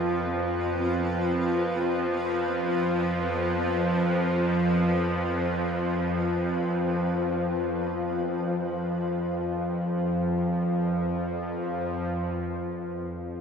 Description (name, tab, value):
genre	dark ambient drone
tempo	free time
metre	none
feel	none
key	unclear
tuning	A4 = 439 Hz
part	granular cloud pad	sustained chords	0.0-12.1 s	C4 to B4	-33 LUFS	equal	built-in reverb
part	bowed-like drone	drone	0.0-13.4 s	F2 to F3	-25 LUFS	equal	built-in reverb
room	wet echo chamber reverb, RT60 2.3 s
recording	none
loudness	-25 LUFS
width	side -6 dB against mid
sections	0.0-12.1 A section; 12.1-13.4 A section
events	fade-out on ambient pad 0.0-12.1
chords	0.0 F5; 12.1 N.C.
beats	free time